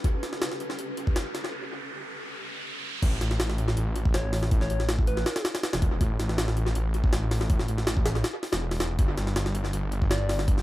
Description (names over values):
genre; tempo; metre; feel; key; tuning
drum and bass, jungle; 161 BPM; 4/4; straight; unclear; A4 = 440 Hz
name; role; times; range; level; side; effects
granular cloud pad; sustained chords; 0.0-3.0 s; C#4 to B4; -38 LUFS; left 1 dB; built-in reverb
jungle sampler-style drum kit; drums; 0.0-10.6 s; crash cymbal, hi-hat, kick drum, snare drum; -27 LUFS; equal; analog delay
riser; sound effects; 0.0-3.0 s; none; -38 LUFS; right 2 dB; none
detuned saw bass; bass; 3.0-10.6 s; E1 to A1; -27 LUFS; equal; none
soft struck synth lead; melody; 4.1-5.4, 10.1-10.3 s; B4 to D5; -35 LUFS; left 1 dB; chorus, vintage 12-bit sampler grit, dub echo
room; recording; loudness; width
little or no reverb; echo-heavy mix, vinyl crackle; -25 LUFS; side -16 dB against mid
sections
0.0-3.0 A section; 3.0-10.6 B section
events
build-up 0.0-3.0; riser 0.0-3.0; break 1.5-3.0; drop 3.0-10.6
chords
0.0 A9; 3.0 A5; 9.0 N.C.